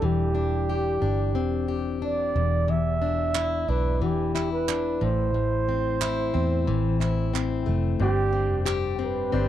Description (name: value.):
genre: acoustic pop.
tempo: 90 BPM.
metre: 4/4.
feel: straight.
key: G mixolydian.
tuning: A4 = 440 Hz.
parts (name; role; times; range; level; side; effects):
breathy flugelhorn; melody; 0.0-9.5 s; G4 to E5; -28 LUFS; right 5 dB; tape echo.
fingerpicked plugged-in steel-string acoustic guitar; accompaniment; 0.0-9.5 s; E2 to G4; -27 LUFS; left 7 dB; none.
vintage muted fingered electric bass; bass; 0.0-9.5 s; E1 to E2; -27 LUFS; right 1 dB; none.
group handclap; percussion; 3.4-8.8 s; none; -32 LUFS; right 13 dB; none.
bright concert grand piano; accompaniment; 8.0-9.5 s; C4 to D5; -35 LUFS; left 5 dB; none.
room: little or no reverb.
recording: dry, close 1970s-style studio recording.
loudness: -23 LUFS.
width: side -11 dB against mid.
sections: 0.0-8.0 A section; 8.0-9.5 B section.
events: none.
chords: 0.0 Cadd9/E; 2.4 E5; 5.0 Am; 8.0 Gsus4.